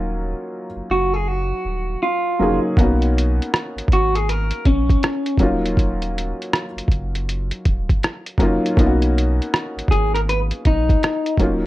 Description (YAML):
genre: lo-fi hip hop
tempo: 80 BPM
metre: 4/4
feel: swing 62% on 16ths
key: unclear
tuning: A4 = 441 Hz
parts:
  - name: felt-muted upright piano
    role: accompaniment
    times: 0.0-11.7 s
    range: Gb3 to Ab4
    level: -23 LUFS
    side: left 1 dB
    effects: cassette tape, plate reverb
  - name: warm sub bass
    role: bass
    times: 0.0-11.7 s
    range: Eb1 to B1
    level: -22 LUFS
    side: equal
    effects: none
  - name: electric guitar through a small old amp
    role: melody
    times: 0.9-5.4, 9.9-11.4 s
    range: C#4 to B4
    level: -21 LUFS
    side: equal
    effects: plate reverb
  - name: lo-fi sampler-style drum kit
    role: drums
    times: 2.8-11.6 s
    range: hi-hat, kick drum, rim click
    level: -18 LUFS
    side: equal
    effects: none
room: light reverb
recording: none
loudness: -17 LUFS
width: side -16 dB against mid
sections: 0.0-11.7 A section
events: none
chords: 0.0 Ebm9; 2.8 Bmaj9; 5.4 Ebm9; 8.8 Bmaj9